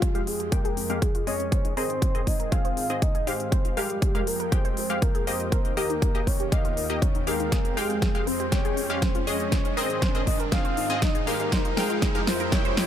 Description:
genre	progressive house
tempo	120 BPM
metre	4/4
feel	straight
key	F minor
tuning	A4 = 440 Hz
part	soft octave-layered synth lead	melody	0.0-12.9 s	F4 to F5	-31 LUFS	left 1 dB	chorus, tremolo, ping-pong delay
part	lush unison pad	sustained chords	0.0-12.9 s	Eb2 to G5	-35 LUFS	right 2 dB	chorus, phaser, sidechain pumping
part	analog pluck	arpeggios	0.0-12.9 s	C4 to C5	-34 LUFS	left 2 dB	chorus, phaser, sidechain pumping, digital delay
part	supersaw stab	stabs	0.0-12.9 s	Ab3 to G5	-31 LUFS	left 2 dB	sidechain pumping, low-pass filter, digital delay
part	big-room dance drum kit	drums	0.0-12.9 s	hi-hat, snare drum	-31 LUFS	equal	overdrive, small room ambience
part	electronic kick drum	drums	0.0-12.6 s	none	-24 LUFS	equal	overdrive, small room ambience
part	riser	sound effects	0.0-12.9 s	none	-36 LUFS	right 2 dB	none
room	little or no reverb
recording	none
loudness	-23 LUFS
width	side -10 dB against mid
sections	0.0-12.9 A section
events	build-up 0.0-12.9; riser 0.0-12.9; filter sweep on synth pluck 0.0-12.9; filter sweep on supersaw synth 0.0-12.9; drum fill 7.5-12.9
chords	0.0 Fmadd9; 1.5 Ab; 3.5 Fmadd9; 5.5 Eb; 7.5 Fmadd9; 9.5 Ab; 11.5 Fmadd9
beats	0.02 0.52 1.02 | 1.52 2.02 2.52 3.02 | 3.52 4.02 4.52 5.02 | 5.52 6.02 6.52 7.02 | 7.52 8.02 8.52 9.02 | 9.52 10.02 10.52 11.02 | 11.52 12.02 12.52

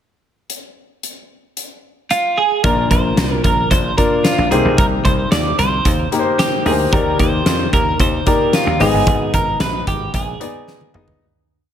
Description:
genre	1980s-style pop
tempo	112 BPM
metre	4/4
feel	straight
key	unclear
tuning	A4 = 440 Hz
part	huge arena drum kit	drums	0.5-11.2 s	hi-hat, kick drum, snare drum, toms	-19 LUFS	equal	gated reverb
part	twelve-string electric guitar	melody	2.1-10.9 s	F4 to D5	-18 LUFS	right 3 dB	none
part	clear baby grand piano	accompaniment	2.6-11.2 s	Ab2 to Eb5	-19 LUFS	left 4 dB	none
part	dry thumbed slap bass	bass	2.6-11.1 s	G1 to F2	-20 LUFS	equal	none
room	light reverb, small room ambience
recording	none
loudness	-13 LUFS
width	side -9 dB against mid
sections	0.5-2.6 pickup bar; 2.6-11.2 verse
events	fade-out 9.1-11.2; drum fill 10.7-11.2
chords	0.5 N.C.; 2.6 Bb; 4.5 Cm7; 6.9 Ebmaj7; 8.8 Abm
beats	| 0.50 1.03 1.57 2.10 | 2.64 3.18 3.71 4.25 | 4.78 5.32 5.85 6.39 | 6.93 7.46 8.00 8.53 | 9.07 9.60 10.14 10.68

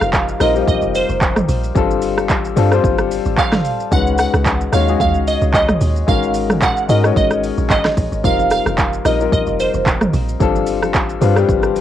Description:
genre	amapiano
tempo	111 BPM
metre	4/4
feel	swing 55% on 16ths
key	unclear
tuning	A4 = 440 Hz
part	glassy wavetable pluck	melody	0.0-10.1 s	C5 to Gb5	-20 LUFS	right 3 dB	chorus, cassette tape, tape echo, plate reverb
part	warm grand piano	accompaniment	0.0-11.8 s	G3 to Db5	-19 LUFS	left 8 dB	cassette tape, plate reverb
part	deep log drum bass	bass	0.0-11.8 s	F1 to Ab2	-20 LUFS	right 1 dB	none
part	deep house drum kit	drums	0.0-11.8 s	handclaps, hi-hat, kick drum, rim click, shaker, snare drum, toms	-18 LUFS	right 1 dB	overdrive
part	congas	percussion	8.2-11.8 s	none	-30 LUFS	right 12 dB	none
room	light reverb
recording	home recording on cassette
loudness	-13 LUFS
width	side -11 dB against mid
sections	0.0-11.8 A section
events	none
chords	0.0 F9sus4; 1.8 G9sus4; 3.9 Db9sus4; 6.1 Ab9sus4; 8.2 F9sus4; 10.4 G9sus4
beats	0.13 0.68 1.22 | 1.76 2.30 2.84 3.38 | 3.92 4.46 5.00 5.54 | 6.08 6.62 7.16 7.70 | 8.24 8.78 9.32 9.86 | 10.40 10.95 11.49

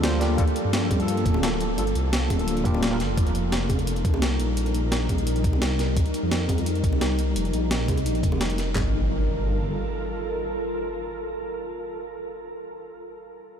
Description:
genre	liquid drum and bass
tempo	172 BPM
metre	4/4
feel	straight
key	G minor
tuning	A4 = 440 Hz
part	tine electric piano	accompaniment	0.0-3.0 s	G3 to C5	-30 LUFS	equal	overdrive, auto-pan, analog delay
part	glassy FM pad	sustained chords	0.0-12.3 s	F3 to Bb4	-28 LUFS	left 1 dB	ensemble chorus, built-in reverb, sidechain pumping
part	dark detuned saw bass	bass	0.0-9.8 s	D1 to G2	-26 LUFS	equal	none
part	breakbeat sampler-style drum kit	drums	0.0-8.7 s	hi-hat, snare drum	-30 LUFS	equal	none
part	breakbeat sampler-style drum kit	drums	0.4-8.8 s	handclaps, kick drum, snare drum, toms	-24 LUFS	equal	none
part	bongos	percussion	0.9-8.4 s	none	-37 LUFS	right 3 dB	none
part	impact	sound effects	8.8-12.5 s	none	-31 LUFS	equal	none
room	moderate huge ambient reverb, RT60 7.2 s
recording	dreamy mix soaked in reverb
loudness	-22 LUFS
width	side -8 dB against mid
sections	0.0-8.8 A section; 8.8-11.5 B section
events	filter sweep on ambient pad 0.0-8.8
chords	0.0 Gm9; 3.2 F9sus4; 8.8 Gm9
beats	0.03 | 0.38 0.73 1.08 1.43 | 1.78 2.13 2.48 2.83 | 3.17 3.52 3.87 4.22 | 4.57 4.92 5.27 5.62 | 5.96 6.31 6.66 7.01 | 7.36 7.71 8.06 8.41 | 8.76 9.10 9.45 9.80 | 10.15 10.50 10.85 11.20

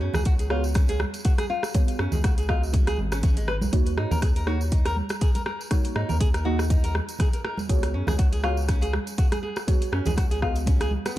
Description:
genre	afro house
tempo	121 BPM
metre	4/4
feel	swing 55% on 16ths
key	unclear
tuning	A4 = 443 Hz
part	nylon-string guitar	arpeggios	0.0-11.2 s	Ab3 to Cb5	-32 LUFS	left 1 dB	sidechain pumping, ping-pong delay
part	deep mellow chord stab	stabs	0.0-11.2 s	Bb3 to Eb5	-33 LUFS	right 3 dB	chorus, sidechain pumping, ping-pong delay
part	round analog bass	bass	0.0-11.0 s	Ab1 to Ab2	-26 LUFS	equal	sidechain pumping
part	afro-pop drum kit	drums	0.1-11.1 s	hi-hat, rim click	-32 LUFS	right 1 dB	small room ambience
part	congas	percussion	0.1-11.2 s	none	-34 LUFS	right 3 dB	none
part	tambourine	percussion	0.1-11.2 s	none	-43 LUFS	right 3 dB	none
part	electronic kick drum	drums	0.3-10.8 s	none	-22 LUFS	equal	small room ambience
room	small room ambience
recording	dark, warm production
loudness	-22 LUFS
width	side -14 dB against mid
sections	0.0-11.2 A section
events	none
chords	0.0 Db7sus4; 3.7 Ebm7; 7.7 Db7sus4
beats	0.26 0.75 1.25 | 1.74 2.24 2.74 3.23 | 3.73 4.22 4.72 5.21 | 5.71 6.21 6.70 7.20 | 7.69 8.19 8.69 9.18 | 9.68 10.17 10.67 11.16

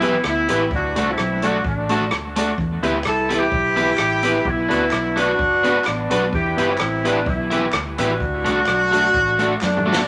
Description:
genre	ska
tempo	128 BPM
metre	4/4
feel	swing 54% on 8ths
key	E minor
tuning	A4 = 440 Hz
part	warm horn section	melody	0.0-10.1 s	A3 to A4	-22 LUFS	equal	none
part	electric guitar at the edge of break-up	accompaniment	0.0-10.0 s	A3 to B4	-26 LUFS	equal	vibrato effect, analog delay
part	clear upright piano	stabs	0.0-10.0 s	A3 to B4	-28 LUFS	equal	tube saturation
part	vintage muted fingered electric bass	bass	0.0-10.0 s	F#1 to F#2	-30 LUFS	equal	none
part	swinging big-band drum kit	drums	0.0-10.0 s	hi-hat, kick drum, rim click, snare drum, toms	-29 LUFS	equal	none
part	group handclap	percussion	3.0-9.7 s	none	-38 LUFS	equal	none
room	wet studio reverb, RT60 0.6 s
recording	none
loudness	-19 LUFS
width	mono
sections	0.0-10.1 A section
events	drum fill 9.6-10.1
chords	0.0 Em; 0.7 D; 2.6 Em; 4.5 Bm; 6.3 Em; 8.2 D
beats	0.24 | 0.71 1.18 1.65 2.12 | 2.58 3.05 3.52 3.99 | 4.46 4.93 5.39 5.86 | 6.33 6.80 7.27 7.74 | 8.21 8.68 9.14 9.61

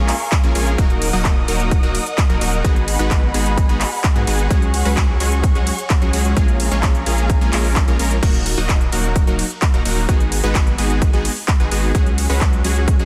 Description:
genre	EDM, festival progressive house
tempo	129 BPM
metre	4/4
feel	straight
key	Eb minor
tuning	A4 = 436 Hz
part	dark symphonic string section	sustained chords	0.0-8.2 s	Ab4 to Eb6	-29 LUFS	equal	sidechain pumping
part	supersaw stab	riff	0.0-13.1 s	Gb3 to Eb5	-25 LUFS	equal	sidechain pumping, dub echo
part	saturated sub bass	bass	0.0-13.1 s	Eb1 to Ab2	-23 LUFS	equal	sidechain pumping
part	big-room dance drum kit	drums	0.1-13.1 s	crash cymbal, handclaps, hi-hat, ride cymbal	-27 LUFS	equal	overdrive
part	electronic kick drum	drums	0.3-13.0 s	none	-19 LUFS	equal	overdrive
room	digital ambience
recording	dense, heavily limited modern master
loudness	-17 LUFS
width	mono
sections	0.0-8.2 A section; 8.2-13.1 A section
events	drop 0.0-8.2, 8.2-13.1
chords	0.0 Bbm7; 0.8 Ebm; 2.6 Abm7; 4.5 Dbsus4; 6.4 Bbm7; 8.2 Ebm; 10.1 Abm7; 11.9 Dbsus4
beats	0.32 | 0.79 1.25 1.72 2.18 | 2.65 3.11 3.58 4.04 | 4.51 4.97 5.44 5.90 | 6.37 6.83 7.30 7.76 | 8.23 8.69 9.16 9.62 | 10.09 10.55 11.02 11.48 | 11.95 12.41 12.88

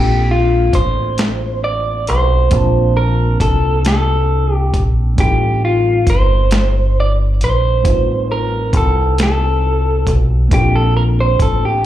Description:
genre	slow six-eight R&B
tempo	45 BPM (dotted quarters)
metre	6/8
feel	straight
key	Bb major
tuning	A4 = 440 Hz
part	electric guitar through a small old amp	melody	0.0-11.8 s	F4 to D5	-17 LUFS	equal	slapback echo
part	mellow tine electric piano	accompaniment	0.0-11.9 s	G3 to A5	-25 LUFS	left 2 dB	slow stereo tremolo, slapback echo
part	deep dub fingered electric bass	bass	0.0-11.9 s	G1 to C2	-15 LUFS	equal	none
part	dusty soul sampler-style drum kit	drums	0.7-11.6 s	hi-hat, kick drum, snare drum	-17 LUFS	equal	overdrive
room	little or no reverb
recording	live gig heard through the venue's PA, club reverb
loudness	-12 LUFS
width	side -12 dB against mid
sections	0.0-11.9 A section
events	none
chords	0.0 Bbmaj9; 5.2 F9; 10.5 Bbmaj9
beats	1.18 | 2.52 3.85 | 5.18 6.52 | 7.85 9.18 | 10.52 11.85

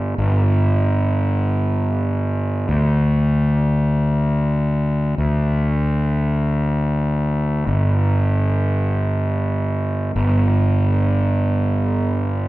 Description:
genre	post-rock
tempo	48 BPM (dotted quarters)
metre	6/8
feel	straight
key	unclear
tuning	A4 = 441 Hz
part	fuzz fingered electric bass	solo	0.0-12.5 s	G1 to D2	-17 LUFS	equal	overdrive
room	wet recital hall reverb, RT60 1.7 s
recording	recorded in a church or concert hall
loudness	-17 LUFS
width	side -17 dB against mid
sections	0.0-12.5 A section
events	none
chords	none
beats	| 0.19 1.44 | 2.69 3.94 | 5.18 6.43 | 7.68 8.92 | 10.17 11.41

